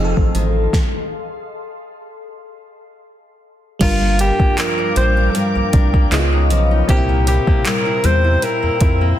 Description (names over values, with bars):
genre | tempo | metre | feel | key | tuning
contemporary R&B | 78 BPM | 4/4 | swing 54% on 16ths | G dorian | A4 = 439 Hz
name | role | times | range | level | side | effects
FM electric piano | accompaniment | 0.0-9.2 s | Bb2 to D#5 | -23 LUFS | right 1 dB | chorus, phaser
glassy FM pad | sustained chords | 0.1-9.2 s | Bb4 to E6 | -27 LUFS | left 2 dB | ensemble chorus, built-in reverb
fingerpicked steel-string acoustic guitar | arpeggios | 0.0-9.2 s | F2 to E4 | -24 LUFS | left 4 dB | tape echo
rubbery square bass | bass | 0.0-9.1 s | F1 to F2 | -16 LUFS | equal | none
smooth R&B drum kit | drums | 0.2-9.0 s | crash cymbal, handclaps, hi-hat, kick drum, snare drum | -18 LUFS | equal | none
breathy alto saxophone | melody | 3.8-9.2 s | F4 to C5 | -20 LUFS | equal | none
room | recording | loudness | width
light reverb | dense, heavily limited modern master | -13 LUFS | side -12 dB against mid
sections
0.0-3.8 A section; 3.8-9.2 B section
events
stop 0.7-3.8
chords
0.0 F7; 0.7 N.C.; 3.8 Gm7; 6.1 C#9; 6.9 C7